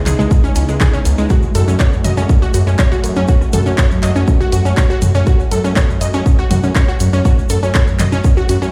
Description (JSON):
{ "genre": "melodic techno", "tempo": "121 BPM", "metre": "4/4", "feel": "straight", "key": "unclear", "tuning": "A4 = 440 Hz", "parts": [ { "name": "warm analog pad", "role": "sustained chords", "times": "0.0-8.7 s", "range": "C#3 to F#4", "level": "-26 LUFS", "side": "equal", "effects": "chorus, sidechain pumping" }, { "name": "unison pluck", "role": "arpeggios", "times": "0.1-8.7 s", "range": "G#3 to D#5", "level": "-22 LUFS", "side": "equal", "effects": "sidechain pumping, tape echo" }, { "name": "dark detuned saw bass", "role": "bass", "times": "0.1-8.7 s", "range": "C#2 to F#2", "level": "-17 LUFS", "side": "equal", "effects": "sidechain pumping" }, { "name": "punchy analog drum machine", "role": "drums", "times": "0.1-8.7 s", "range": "handclaps, hi-hat, rim click, toms", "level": "-24 LUFS", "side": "equal", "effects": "overdrive, sidechain pumping on toms, studio reverb, sidechain pumping on hats" }, { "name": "egg shaker", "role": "percussion", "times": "0.1-8.7 s", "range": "none", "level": "-35 LUFS", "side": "equal", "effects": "none" }, { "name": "electronic kick drum", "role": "drums", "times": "0.3-8.3 s", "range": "none", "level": "-15 LUFS", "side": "equal", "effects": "studio reverb" } ], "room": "light reverb", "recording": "played on a big sound system in a bare room, stone room reverb", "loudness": "-14 LUFS", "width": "mono", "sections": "0.0-8.7 A section", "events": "none", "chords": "0.0 C#m7; 1.3 F#madd9", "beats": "0.31 0.81 | 1.30 1.80 2.29 2.79 | 3.28 3.78 4.28 4.77 | 5.27 5.76 6.26 6.75 | 7.25 7.75 8.24" }